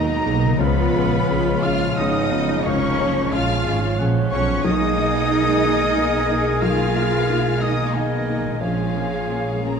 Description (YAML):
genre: cinematic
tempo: 90 BPM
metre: 3/4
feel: rubato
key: unclear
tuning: A4 = 440 Hz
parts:
  - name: warm symphonic violin section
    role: melody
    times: 0.0-9.8 s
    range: Eb5 to F6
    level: -31 LUFS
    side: left 3 dB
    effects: none
  - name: silver concert flute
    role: second line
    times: 0.0-9.8 s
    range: Eb5 to F6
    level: -29 LUFS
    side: left 2 dB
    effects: none
  - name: warm clarinet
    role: second line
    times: 0.0-9.8 s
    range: Bb4 to Eb5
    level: -30 LUFS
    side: equal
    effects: none
  - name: warm oboe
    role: second line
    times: 0.0-9.8 s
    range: F5 to Bb5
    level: -32 LUFS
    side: right 1 dB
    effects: none
  - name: warm symphonic violin section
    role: second line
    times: 0.0-9.8 s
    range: Eb4 to F5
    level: -28 LUFS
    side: left 4 dB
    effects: none
  - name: clear symphonic viola section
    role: accompaniment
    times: 0.0-9.8 s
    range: Eb3 to Ab4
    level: -28 LUFS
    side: right 2 dB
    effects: none
  - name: felt-muted upright piano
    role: accompaniment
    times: 0.0-9.8 s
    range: Bb1 to Ab4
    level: -26 LUFS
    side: left 3 dB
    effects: none
  - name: mellow French horn section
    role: sustained chords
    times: 0.0-9.8 s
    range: F3 to Ab4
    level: -29 LUFS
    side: left 4 dB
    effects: none
  - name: concert harp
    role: arpeggios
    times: 0.0-9.8 s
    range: Ab2 to Ab4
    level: -28 LUFS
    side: left 9 dB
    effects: none
  - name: clear symphonic double bass section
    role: bass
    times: 0.0-9.8 s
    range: F1 to Eb2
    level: -24 LUFS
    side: right 4 dB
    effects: none
  - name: rich symphonic cello section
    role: bass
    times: 0.0-9.8 s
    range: Eb3 to F4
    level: -26 LUFS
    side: right 4 dB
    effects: none
room: moderate concert hall reverb, RT60 1.9 s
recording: dark, warm production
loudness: -17 LUFS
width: side -6 dB against mid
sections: 0.0-9.8 A section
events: none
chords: 0.0 Abmadd9; 0.6 Db7; 4.6 Abmadd9/Cb; 8.6 Bbm7